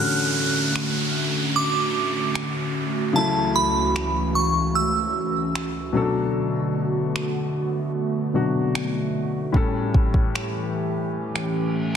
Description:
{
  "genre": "contemporary R&B",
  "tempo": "75 BPM",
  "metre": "4/4",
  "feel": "straight",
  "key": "D major",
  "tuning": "A4 = 441 Hz",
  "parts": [
    { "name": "glassy synth bell", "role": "melody", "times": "0.0-5.9 s", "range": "A5 to F#6", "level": "-24 LUFS", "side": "right 2 dB", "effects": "chorus, tape echo" },
    { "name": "warm baby grand piano", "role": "accompaniment", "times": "0.0-12.0 s", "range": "A2 to A4", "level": "-26 LUFS", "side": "left 4 dB", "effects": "none" },
    { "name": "hollow soft pad", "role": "sustained chords", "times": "0.1-12.0 s", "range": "C#2 to G4", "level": "-25 LUFS", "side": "right 1 dB", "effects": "chorus, sidechain pumping" },
    { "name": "downlifter and reverse cymbal", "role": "sound effects", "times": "0.0-12.0 s", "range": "none", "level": "-29 LUFS", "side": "right 2 dB", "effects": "none" },
    { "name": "smooth R&B drum kit", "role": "drums", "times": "0.8-11.5 s", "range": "finger snaps, kick drum", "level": "-24 LUFS", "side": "equal", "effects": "soft clipping on snare" }
  ],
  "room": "light reverb",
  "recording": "dense, heavily limited modern master",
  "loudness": "-21 LUFS",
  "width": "side -8 dB against mid",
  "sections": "0.0-12.0 A section",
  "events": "reverse cymbal 11.5-12.0",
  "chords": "0.0 Dmaj7; 3.1 F#m7/C#; 5.9 Bm7; 9.5 A7"
}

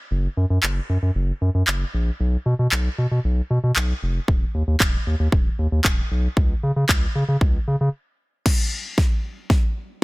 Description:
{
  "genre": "dance-pop",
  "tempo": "115 BPM",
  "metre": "4/4",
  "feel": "straight",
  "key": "F# major",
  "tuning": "A4 = 440 Hz",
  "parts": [
    { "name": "saturated sub bass", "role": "bass", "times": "0.1-7.9 s", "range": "D#1 to C#3", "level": "-20 LUFS", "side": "equal", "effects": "sidechain pumping" },
    { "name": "pop drum kit", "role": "drums", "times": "0.6-9.6 s", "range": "crash cymbal, handclaps, kick drum, snare drum", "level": "-20 LUFS", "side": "equal", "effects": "none" }
  ],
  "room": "little or no reverb",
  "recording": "dense, heavily limited modern master",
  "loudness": "-19 LUFS",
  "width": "side -23 dB against mid",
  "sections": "0.0-8.5 A section; 8.5-10.0 B section",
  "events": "break 7.9-8.5; build-up 8.5-10.0; drum fill 8.5-10.0",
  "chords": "none"
}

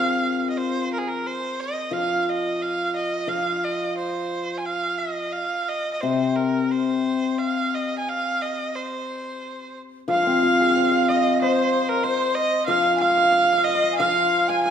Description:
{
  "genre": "chinese traditional, Chinese chamber ensemble",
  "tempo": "89 BPM",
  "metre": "2/4",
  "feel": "rubato",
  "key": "unclear",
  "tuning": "A4 = 440 Hz",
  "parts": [
    { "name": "rich erhu", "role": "melody", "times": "0.0-14.7 s", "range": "Ab4 to Ab5", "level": "-24 LUFS", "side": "right 3 dB", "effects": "none" },
    { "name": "hammered dulcimer", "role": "second line", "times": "0.0-1.2, 10.1-14.7 s", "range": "Bb4 to Ab5", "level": "-28 LUFS", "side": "right 5 dB", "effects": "none" },
    { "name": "hammered dulcimer", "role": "accompaniment", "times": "0.0-14.7 s", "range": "C3 to C5", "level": "-24 LUFS", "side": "left 3 dB", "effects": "none" },
    { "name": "bright reedy large dizi", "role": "second line", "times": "10.1-14.7 s", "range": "Bb4 to Ab5", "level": "-24 LUFS", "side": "left 4 dB", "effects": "none" }
  ],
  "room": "wet recital hall reverb, RT60 1.6 s",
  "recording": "none",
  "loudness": "-20 LUFS",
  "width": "side -8 dB against mid",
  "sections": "0.0-10.1 A section; 10.1-14.7 B section",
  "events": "none",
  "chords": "none"
}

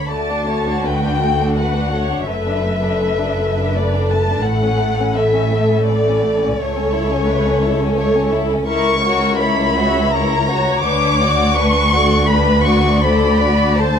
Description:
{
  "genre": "classical, slow romantic movement for symphony orchestra",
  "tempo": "84 BPM",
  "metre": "3/4",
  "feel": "uneven beats, rubato",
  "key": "D major, B minor from 8.7 s",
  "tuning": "A4 = 439 Hz",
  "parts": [
    { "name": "dark chamber violin section", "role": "melody", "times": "0.0-14.0 s", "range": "C#5 to D6", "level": "-20 LUFS", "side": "left 3 dB", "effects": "none" },
    { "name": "warm chamber violin section", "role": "second line", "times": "0.0-14.0 s", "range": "A3 to D5", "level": "-20 LUFS", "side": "left 3 dB", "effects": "none" },
    { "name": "rich chamber viola section", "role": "accompaniment", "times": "0.1-14.0 s", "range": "A4 to E5", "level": "-22 LUFS", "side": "right 2 dB", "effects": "none" },
    { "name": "dark chamber double bass section", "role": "bass", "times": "0.1-14.0 s", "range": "F#1 to D2", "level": "-21 LUFS", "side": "right 2 dB", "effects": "none" },
    { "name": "warm chamber cello section", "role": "bass", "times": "0.1-14.0 s", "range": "C#2 to A2", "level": "-21 LUFS", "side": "equal", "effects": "none" }
  ],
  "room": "moderate recital hall reverb, RT60 1.3 s",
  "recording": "none",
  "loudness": "-14 LUFS",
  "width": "side -7 dB against mid",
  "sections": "0.1-14.0 A section",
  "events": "none",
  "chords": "0.1 D; 2.3 D/F#; 4.5 A; 6.6 A/C#; 8.7 F#7/C#; 10.8 Bm/D; 13.0 D7"
}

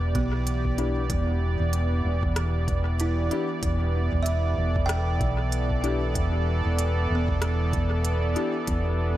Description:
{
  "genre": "ambient dub",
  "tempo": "95 BPM",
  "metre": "4/4",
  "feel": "swing 58% on 16ths",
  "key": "E minor",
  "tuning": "A4 = 437 Hz",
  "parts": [
    { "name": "warm analog pad", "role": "sustained chords", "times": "0.0-9.2 s", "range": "E3 to D5", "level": "-29 LUFS", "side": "right 1 dB", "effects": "chorus" },
    { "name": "hollow-body short-scale fingered electric bass", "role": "bass", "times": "0.0-9.1 s", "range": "E1 to B1", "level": "-25 LUFS", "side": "equal", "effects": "none" },
    { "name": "organic electronic drum kit", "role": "drums", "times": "0.1-8.8 s", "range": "hi-hat, rim click", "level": "-37 LUFS", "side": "equal", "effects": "overdrive, studio reverb, dub echo" },
    { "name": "buzzing kalimba", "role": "arpeggios", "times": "0.2-9.2 s", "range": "B3 to G5", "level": "-35 LUFS", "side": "right 3 dB", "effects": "dub echo" },
    { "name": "electronic kick drum", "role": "drums", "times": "0.2-8.8 s", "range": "none", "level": "-30 LUFS", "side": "equal", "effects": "overdrive, studio reverb" },
    { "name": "dark upright piano", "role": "stabs", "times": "0.8-8.5 s", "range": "D4 to G4", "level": "-33 LUFS", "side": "left 5 dB", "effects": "dub echo" }
  ],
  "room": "light reverb",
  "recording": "none",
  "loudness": "-23 LUFS",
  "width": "side -14 dB against mid",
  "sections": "0.0-9.2 A section",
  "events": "none",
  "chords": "0.0 Em7"
}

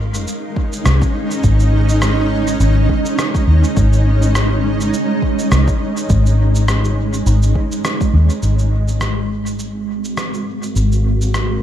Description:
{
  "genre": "ambient dub",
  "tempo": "103 BPM",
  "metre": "4/4",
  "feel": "swing 56% on 16ths",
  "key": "unclear",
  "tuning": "A4 = 439 Hz",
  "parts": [
    { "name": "granular cloud pad", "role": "sustained chords", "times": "0.0-11.6 s", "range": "Ab3 to F5", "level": "-19 LUFS", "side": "right 1 dB", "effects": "built-in reverb" },
    { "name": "vintage muted fingered electric bass", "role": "bass", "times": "0.0-11.6 s", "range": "Ab1 to Eb2", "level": "-14 LUFS", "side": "equal", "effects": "none" },
    { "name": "electronic shaker and rim click", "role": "drums", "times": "0.1-11.5 s", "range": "none", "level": "-25 LUFS", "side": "equal", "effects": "dub echo" },
    { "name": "electronic kick drum", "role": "drums", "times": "0.6-8.1 s", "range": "none", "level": "-18 LUFS", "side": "equal", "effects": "overdrive" }
  ],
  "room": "little or no reverb",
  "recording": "none",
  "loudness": "-13 LUFS",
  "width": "side -11 dB against mid",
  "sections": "0.0-8.4 A section; 8.4-11.6 B section",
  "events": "filter sweep on ambient pad 8.4-11.6",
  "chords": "0.0 Dbsus2/Ab; 8.4 Ab13"
}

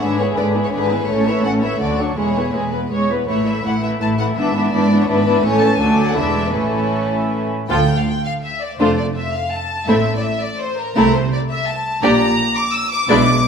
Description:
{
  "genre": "quick classical-period movement for string orchestra",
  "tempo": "166 BPM",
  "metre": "3/4",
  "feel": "rubato",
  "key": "A major, D minor from 7.7 s",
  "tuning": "A4 = 439 Hz",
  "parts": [
    { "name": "clear studio violin section", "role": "melody", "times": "0.0-13.5 s", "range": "A4 to E6", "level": "-22 LUFS", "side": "left 3 dB", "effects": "none" },
    { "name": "warm studio violin section", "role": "second line", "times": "0.0-13.3 s", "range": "C#4 to D5", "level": "-21 LUFS", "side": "left 1 dB", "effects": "none" },
    { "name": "rich studio viola section", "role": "accompaniment", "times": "0.0-13.3 s", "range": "D3 to F4", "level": "-20 LUFS", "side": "right 1 dB", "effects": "none" },
    { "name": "dark studio cello section", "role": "bass", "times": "0.0-13.4 s", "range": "D2 to C3", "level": "-22 LUFS", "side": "right 1 dB", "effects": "none" },
    { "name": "warm studio double bass section", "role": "bass", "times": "0.0-13.4 s", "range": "E1 to D2", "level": "-25 LUFS", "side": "right 2 dB", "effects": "none" }
  ],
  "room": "moderate scoring stage reverb, RT60 1.7 s",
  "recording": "none",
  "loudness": "-15 LUFS",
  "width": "side -6 dB against mid",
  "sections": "0.0-7.7 A section; 7.7-13.5 B section",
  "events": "none",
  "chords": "0.0 E7/G#; 1.1 A; 1.8 D; 2.2 E; 3.3 A5; 4.4 E7/G#; 5.4 A; 5.8 D; 6.2 E7; 6.5 A; 7.7 Dm; 8.8 Dm/F; 9.9 Am; 11.0 Am/C; 12.0 Gm/Bb"
}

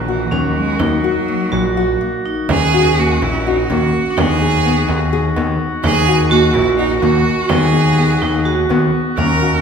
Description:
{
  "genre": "contemporary instrumental, chamber music in an uneven meter",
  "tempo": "251 BPM (eighths)",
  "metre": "7/8",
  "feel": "straight",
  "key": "Eb minor",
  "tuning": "A4 = 440 Hz",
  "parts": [
    { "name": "clear cello", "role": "melody", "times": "0.0-9.6 s", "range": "Fb3 to Bb4", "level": "-19 LUFS", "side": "right 4 dB", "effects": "none" },
    { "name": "vibraphone with hard mallets", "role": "second line", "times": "0.0-9.6 s", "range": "Bb3 to Gb4", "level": "-20 LUFS", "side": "right 2 dB", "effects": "none" },
    { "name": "mellow woodwind section", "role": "sustained chords", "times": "0.0-9.6 s", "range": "Eb3 to Gb4", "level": "-24 LUFS", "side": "left 1 dB", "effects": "none" },
    { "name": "fat analog bass", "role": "bass", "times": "0.0-9.6 s", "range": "Bb1 to Eb2", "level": "-18 LUFS", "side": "left 1 dB", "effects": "none" },
    { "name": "nylon-string guitar", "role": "arpeggios", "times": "0.1-9.6 s", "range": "Bb3 to Ab4", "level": "-20 LUFS", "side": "left 5 dB", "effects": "none" },
    { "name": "frame drum", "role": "percussion", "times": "0.1-9.5 s", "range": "none", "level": "-25 LUFS", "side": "right 3 dB", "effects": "none" }
  ],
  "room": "wet recital hall reverb, RT60 1.5 s",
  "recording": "recorded in a church or concert hall",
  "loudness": "-13 LUFS",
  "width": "side -6 dB against mid",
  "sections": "0.0-2.5 A section; 2.5-9.6 B section",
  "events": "break 2.0-2.5",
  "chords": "0.0 Ebm; 2.5 Ebm7; 4.2 Abm7/Eb; 5.8 Ebm7; 7.5 Abm7/Eb"
}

